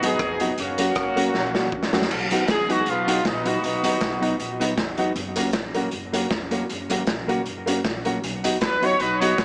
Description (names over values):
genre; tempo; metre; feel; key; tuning
ska; 157 BPM; 4/4; swing 54% on 8ths; unclear; A4 = 444 Hz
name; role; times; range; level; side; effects
warm horn section; melody; 0.0-4.4, 8.6-9.4 s; A#3 to C#5; -26 LUFS; equal; tape echo
mellow electric guitar; accompaniment; 0.0-9.4 s; F#3 to F#4; -30 LUFS; equal; tape echo
clear upright piano; stabs; 0.0-9.4 s; A#3 to F#4; -30 LUFS; equal; none
upright bass; bass; 0.0-9.4 s; E#1 to D#2; -38 LUFS; equal; none
raw garage drum kit; drums; 0.0-9.4 s; crash cymbal, hi-hat, kick drum, rim click, snare drum; -28 LUFS; equal; none
room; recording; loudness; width
moderate studio reverb, RT60 0.6 s; small speaker sound; -23 LUFS; mono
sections
0.0-2.1 A section; 2.1-9.4 B section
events
drum fill 1.3-2.1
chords
0.0 B; 0.6 F#; 2.1 B; 5.2 F#; 8.2 B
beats
0.19 | 0.57 0.96 1.34 1.72 | 2.10 2.48 2.87 3.25 | 3.63 4.01 4.40 4.78 | 5.16 5.54 5.93 6.31 | 6.69 7.08 7.46 7.84 | 8.23 8.61 9.00 9.38